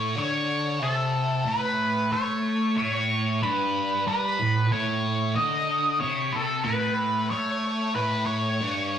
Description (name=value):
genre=rock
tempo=92 BPM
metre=4/4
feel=straight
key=unclear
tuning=A4 = 440 Hz
part: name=octave-fuzz lead guitar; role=melody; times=0.0-9.0 s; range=A4 to D#5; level=-26 LUFS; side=equal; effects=wah, distortion
part: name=thick fuzz guitar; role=riff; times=0.0-9.0 s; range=G2 to A3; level=-26 LUFS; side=equal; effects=distortion, phaser
room=wet stone room reverb, RT60 1.1 s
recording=rough rehearsal-room recording, tube saturation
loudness=-23 LUFS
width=side -9 dB against mid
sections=0.0-9.0 A section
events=none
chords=0.0 A